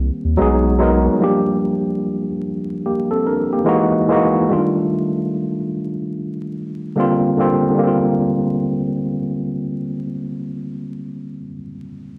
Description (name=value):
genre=lo-fi hip hop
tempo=73 BPM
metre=4/4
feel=swing 62% on 16ths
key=Bb major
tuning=A4 = 441 Hz
part: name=tine electric piano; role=accompaniment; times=0.0-12.2 s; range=D3 to Bb4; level=-20 LUFS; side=equal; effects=overdrive, cassette tape, low-pass filter
part: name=saturated sub bass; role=bass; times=0.0-1.1 s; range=B1 to Eb2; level=-20 LUFS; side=equal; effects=none
room=light reverb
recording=home recording on cassette, vinyl crackle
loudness=-19 LUFS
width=mono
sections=0.0-7.8 A section; 7.8-11.1 B section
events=none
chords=0.4 B6; 1.2 Gm7; 3.7 Emaj9#11; 4.5 Ebmaj9#11; 7.0 Bb69